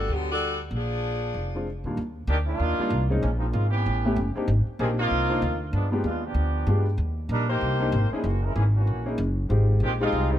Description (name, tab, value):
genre	jazz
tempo	191 BPM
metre	4/4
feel	swing 61% on 8ths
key	Eb major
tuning	A4 = 440 Hz
part	warm saxophone section	melody	0.0-1.6 s	D3 to A4	-28 LUFS	left 2 dB	none
part	upright bass	bass	0.0-10.4 s	F1 to Bb2	-25 LUFS	equal	none
part	warm concert grand piano	accompaniment	1.5-10.4 s	Eb2 to Ab4	-29 LUFS	left 2 dB	none
part	bright trombone section	second line	2.3-10.4 s	Eb3 to C5	-28 LUFS	right 1 dB	none
room	light reverb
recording	none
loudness	-23 LUFS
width	side -11 dB against mid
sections	0.0-2.0 A section; 2.0-10.4 B section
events	trombone section solo 2.0-10.4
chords	0.0 Gmaj7; 0.7 Bb7; 2.0 Ebmaj7(no3); 3.2 Bbm7; 3.9 A9; 4.5 Abmaj9#11; 5.7 G7b9; 7.0 Cm9; 8.2 Gb9; 9.5 Fm9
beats	0.09 0.41 | 0.72 1.03 1.35 1.66 | 1.98 2.29 2.60 2.92 | 3.23 3.54 3.86 4.17 | 4.48 4.80 5.11 5.42 | 5.74 6.05 6.37 6.68 | 6.99 7.31 7.62 7.93 | 8.25 8.56 8.88 9.19 | 9.50 9.82 10.13